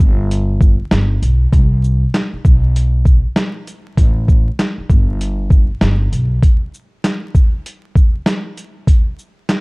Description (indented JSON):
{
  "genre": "hip hop, boom-bap hip-hop",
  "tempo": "98 BPM",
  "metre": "4/4",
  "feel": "swing 62% on 16ths",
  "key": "unclear",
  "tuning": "A4 = 440 Hz",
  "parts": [
    { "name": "upright bass", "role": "bass", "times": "0.0-6.4 s", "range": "G1 to C2", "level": "-15 LUFS", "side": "equal", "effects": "none" },
    { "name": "boom bap sampler-style drum kit", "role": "drums", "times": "0.0-9.6 s", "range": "handclaps, hi-hat, kick drum, shaker, snare drum", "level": "-12 LUFS", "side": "equal", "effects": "none" }
  ],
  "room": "little or no reverb",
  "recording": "dark, warm production, vinyl crackle",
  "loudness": "-12 LUFS",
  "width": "side -33 dB against mid",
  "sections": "0.0-9.6 A section",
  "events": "none",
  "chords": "none"
}